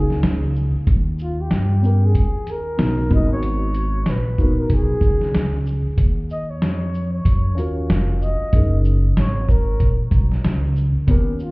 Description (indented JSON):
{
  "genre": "hip hop, jazz-hop",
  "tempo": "94 BPM",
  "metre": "4/4",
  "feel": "swing 60% on 16ths",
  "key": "unclear",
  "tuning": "A4 = 441 Hz",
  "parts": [
    { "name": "breathy flugelhorn", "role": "melody", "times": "0.0-11.5 s", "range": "F4 to Eb5", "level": "-28 LUFS", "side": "equal", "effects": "analog delay" },
    { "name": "dark concert grand piano", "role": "accompaniment", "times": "0.0-11.3 s", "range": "Bb3 to Bb4", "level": "-26 LUFS", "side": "left 1 dB", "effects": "none" },
    { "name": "upright bass", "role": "bass", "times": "0.0-11.5 s", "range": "F1 to G2", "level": "-19 LUFS", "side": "equal", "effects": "none" },
    { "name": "lo-fi sampler-style drum kit", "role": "drums", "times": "0.1-11.5 s", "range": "hi-hat, kick drum, shaker, snare drum", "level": "-20 LUFS", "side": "equal", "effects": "none" }
  ],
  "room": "studio reverb",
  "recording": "heard muffled through a wall, club reverb, EQ",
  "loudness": "-16 LUFS",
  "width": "side -25 dB against mid",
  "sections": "0.0-11.5 A section",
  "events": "none",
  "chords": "0.0 Gb69 (rootless); 0.9 Eb(b13); 3.1 Abm9; 6.0 Ebm7; 8.5 Gb69"
}